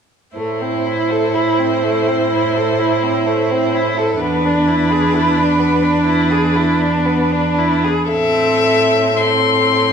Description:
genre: classical, slow romantic movement for string quartet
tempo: 55-66 BPM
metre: 4/4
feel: rubato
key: A minor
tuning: A4 = 441 Hz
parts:
  - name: rich violin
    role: melody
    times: 0.4-9.9 s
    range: B4 to C6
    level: -19 LUFS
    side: left 4 dB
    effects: none
  - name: clear violin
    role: second line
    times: 0.4-9.9 s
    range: A3 to A4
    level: -18 LUFS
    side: left 1 dB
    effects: none
  - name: clear viola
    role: accompaniment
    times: 0.4-9.9 s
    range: C4 to E4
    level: -18 LUFS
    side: right 3 dB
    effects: none
  - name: rich cello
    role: bass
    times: 0.4-9.9 s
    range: E2 to A2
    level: -21 LUFS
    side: right 3 dB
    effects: none
room: wet recital hall reverb, RT60 1.4 s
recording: small room ambience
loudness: -13 LUFS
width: side -7 dB against mid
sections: 0.4-8.1 A section; 8.1-9.9 B section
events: none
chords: 0.4 Am; 4.2 E7(no3); 8.1 Am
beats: | 0.37 1.35 2.32 3.27 | 4.22 5.14 6.07 7.05 | 8.10 9.16

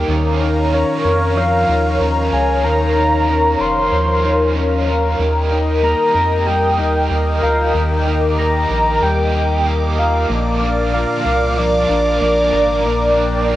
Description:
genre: dream pop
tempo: 94 BPM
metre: 4/4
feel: straight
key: Eb major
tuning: A4 = 440 Hz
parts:
  - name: cranked stack guitar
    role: accompaniment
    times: 0.0-13.6 s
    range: Bb2 to Bb4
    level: -26 LUFS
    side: right 6 dB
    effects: overdrive, tremolo, lush chorus, cassette tape
  - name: phased analog pad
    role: sustained chords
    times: 0.0-13.6 s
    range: Bb4 to Eb6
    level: -19 LUFS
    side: left 1 dB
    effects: phaser, chorus, cassette tape
  - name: electric guitar at the edge of break-up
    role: arpeggios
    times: 0.0-13.6 s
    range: Bb2 to Bb4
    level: -22 LUFS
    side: left 4 dB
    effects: wide subtle chorus, cassette tape, tape echo
  - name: round analog bass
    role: bass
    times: 0.0-13.6 s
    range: F1 to F2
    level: -19 LUFS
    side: right 1 dB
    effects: none
  - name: soft octave-layered synth lead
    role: melody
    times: 0.7-13.6 s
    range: Db5 to C6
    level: -19 LUFS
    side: equal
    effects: chorus, cassette tape, tape echo
room: wet spring reverb, RT60 2.4 s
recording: home recording on cassette, nothing above 10.3 kHz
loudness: -13 LUFS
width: side -14 dB against mid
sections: 0.0-13.6 A section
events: none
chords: 0.1 Bbm; 5.2 Eb; 10.3 Bb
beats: | 0.08 0.72 1.36 2.00 | 2.64 3.27 3.91 4.55 | 5.19 5.83 6.47 7.10 | 7.74 8.38 9.02 9.66 | 10.30 10.93 11.57 12.21 | 12.85 13.49

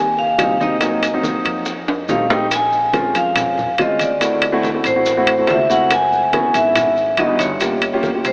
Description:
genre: Afro-Cuban jazz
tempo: 141 BPM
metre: 4/4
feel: straight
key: unclear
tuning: A4 = 440 Hz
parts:
  - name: vibraphone with medium hard mallets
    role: melody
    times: 0.0-8.3 s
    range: C5 to Ab5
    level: -17 LUFS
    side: equal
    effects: none
  - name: warm concert grand piano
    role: accompaniment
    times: 0.0-8.3 s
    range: Gb3 to G4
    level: -20 LUFS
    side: equal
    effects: none
  - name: upright bass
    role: bass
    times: 0.0-8.3 s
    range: G1 to F2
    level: -30 LUFS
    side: equal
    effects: none
  - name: bongos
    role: percussion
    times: 0.2-8.3 s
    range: none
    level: -27 LUFS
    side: equal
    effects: none
  - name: congas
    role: percussion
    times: 0.2-8.3 s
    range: none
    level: -32 LUFS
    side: equal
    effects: none
  - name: maracas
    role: percussion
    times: 0.4-8.3 s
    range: none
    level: -31 LUFS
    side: equal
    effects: none
  - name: timbales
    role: percussion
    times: 0.4-8.3 s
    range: none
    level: -22 LUFS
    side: equal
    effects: none
room: wet huge ambient reverb, RT60 4.2 s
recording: dreamy mix soaked in reverb, AM radio sound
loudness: -14 LUFS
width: side -37 dB against mid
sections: 0.0-2.5 A section; 2.5-8.3 B section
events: drum fill 1.9-2.5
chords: 0.0 Abmaj7 (rootless); 0.8 Cm7b5; 1.7 F7; 2.5 Bbm9; 4.2 D9; 5.9 Dbm11; 7.6 Gm7b5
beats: 0.39 | 0.81 1.24 1.66 2.09 | 2.51 2.94 3.36 3.79 | 4.21 4.64 5.06 5.49 | 5.91 6.33 6.76 7.18 | 7.61 8.03

